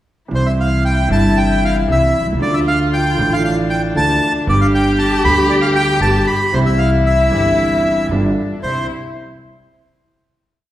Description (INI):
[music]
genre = tango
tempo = 116 BPM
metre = 4/4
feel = rubato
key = C major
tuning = A4 = 439 Hz
[part]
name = bandoneon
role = melody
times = 0.3-8.9 s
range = C5 to B5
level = -18 LUFS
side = right 1 dB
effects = none
[part]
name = dark cello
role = second line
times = 0.3-8.9 s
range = D4 to G4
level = -20 LUFS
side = left 4 dB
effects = none
[part]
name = warm concert grand piano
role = accompaniment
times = 0.3-8.9 s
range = G1 to G4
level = -18 LUFS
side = right 1 dB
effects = none
[part]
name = upright bass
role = bass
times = 0.3-8.8 s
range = G1 to D2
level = -19 LUFS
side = equal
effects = none
[sound]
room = wet recital hall reverb, RT60 1.5 s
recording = recorded in a church or concert hall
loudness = -13 LUFS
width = side -13 dB against mid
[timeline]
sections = 0.3-8.6 A section; 8.6-10.7 final chord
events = none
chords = 0.3 C; 2.4 Dm; 4.5 G; 6.5 C; 8.1 G7; 8.6 C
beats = | 0.32 0.84 1.37 1.89 | 2.41 2.92 3.44 3.96 | 4.47 4.99 5.50 6.02 | 6.54 7.06 7.58 8.10 | 8.62